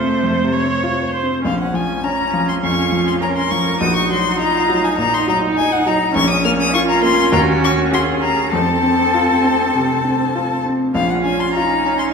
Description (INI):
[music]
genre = quick classical-period movement for piano quartet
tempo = 101 BPM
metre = 4/4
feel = straight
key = Bb minor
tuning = A4 = 440 Hz
[part]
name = rich violin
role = melody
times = 0.0-12.1 s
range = C5 to F6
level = -19 LUFS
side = left 5 dB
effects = none
[part]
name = rich cello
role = second line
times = 0.0-12.1 s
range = A3 to Bb4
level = -21 LUFS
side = right 4 dB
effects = none
[part]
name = clear grand piano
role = accompaniment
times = 0.0-12.1 s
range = Bb1 to C5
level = -19 LUFS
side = left 1 dB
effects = none
[part]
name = clear viola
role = accompaniment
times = 0.0-12.1 s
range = C4 to Db5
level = -22 LUFS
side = right 1 dB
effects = none
[sound]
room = wet recital hall reverb, RT60 1.5 s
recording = heard from further back in the room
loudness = -14 LUFS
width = side -5 dB against mid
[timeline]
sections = 0.0-1.4 A section; 1.4-12.1 B section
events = none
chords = 0.0 F; 1.4 Bbm; 3.8 Ebm/Bb; 6.1 Bbm; 7.3 Ebm7; 8.5 F; 11.0 Bbm